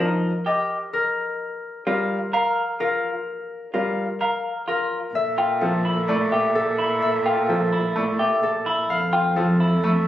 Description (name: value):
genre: classical, minimalist pattern music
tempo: 128 BPM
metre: 4/4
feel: straight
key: unclear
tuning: A4 = 441 Hz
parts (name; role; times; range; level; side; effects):
- concert harp; melody; 0.0-10.1 s; A4 to F5; -26 LUFS; left 3 dB; none
- bright concert grand piano; accompaniment; 0.0-10.1 s; F3 to A3; -25 LUFS; equal; none
- semi-hollow electric guitar; arpeggios; 0.0-9.9 s; Eb4 to Bb4; -26 LUFS; right 1 dB; none
- celesta; arpeggios; 0.5-9.4 s; Eb5 to G5; -25 LUFS; left 2 dB; none
- mellow clarinet; second line; 5.1-10.1 s; A4; -28 LUFS; right 5 dB; none
- rich cello; bass; 5.1-10.1 s; F2 to Bb2; -26 LUFS; right 1 dB; none
room: moderate large studio reverb, RT60 1.2 s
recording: recorded on a phone in the room, studio reverb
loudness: -20 LUFS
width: side -12 dB against mid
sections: 0.0-5.1 A section; 5.1-10.1 B section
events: none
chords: 0.0 F9sus4; 1.4 Bb5; 5.1 Bbmaj7#11; 8.9 Fmaj9